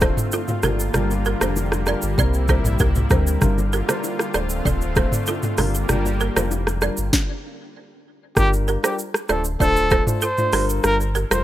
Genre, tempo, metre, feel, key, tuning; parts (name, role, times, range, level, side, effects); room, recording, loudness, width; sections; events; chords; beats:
afrobeats; 97 BPM; 4/4; straight; G dorian; A4 = 439 Hz
soft electric-piano-like synth keys; accompaniment; 0.0-11.4 s; G3 to C5; -28 LUFS; left 2 dB; chorus
lush unison pad; sustained chords; 0.0-7.1 s; C3 to F4; -27 LUFS; equal; chorus
balafon; riff; 0.0-11.4 s; F4 to D5; -28 LUFS; right 5 dB; ping-pong delay
sub bass with octave; bass; 0.0-11.4 s; D1 to D2; -23 LUFS; equal
afro-pop drum kit; drums; 0.0-11.4 s; hi-hat, kick drum, rim click, shaker, snare drum, toms; -22 LUFS; equal; overdrive
bongos and congas; percussion; 0.0-6.8 s; -29 LUFS; left 1 dB
breathy trumpet; melody; 8.4-11.4 s; G4 to C5; -22 LUFS; equal; ping-pong delay
light reverb; rough home demo mix; -18 LUFS; side -13 dB against mid
0.0-8.4 A section; 8.4-11.4 B section
stop 7.1-8.4
0.0 Dm7; 0.6 Gm7; 2.2 C7; 3.4 Gm7; 4.3 Dm7; 5.6 Gm7; 7.1 N.C.; 8.4 Gm7; 9.3 Dm7; 10.5 Gm7
0.33 | 0.94 1.56 2.18 2.80 | 3.42 4.04 4.66 5.27 | 5.89 6.51 7.13 7.75 | 8.37 8.98 9.60 10.22 | 10.84